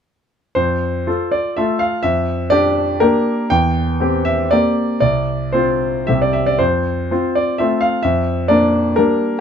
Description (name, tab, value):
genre	classical, romantic triple-time dance for piano with dotted rhythms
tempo	106-142 BPM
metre	3/4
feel	rubato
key	F major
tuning	A4 = 440 Hz
part	clear grand piano	solo	0.6-9.4 s	C2 to G5	-14 LUFS	equal	none
room	light reverb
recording	close, detailed microphones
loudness	-14 LUFS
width	side -7 dB against mid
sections	0.6-9.4 A section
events	none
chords	0.6 F; 2.0 Gm7/F; 3.5 C7/E; 5.0 F5/C; 6.1 C5; 6.6 F; 8.0 Gm7/F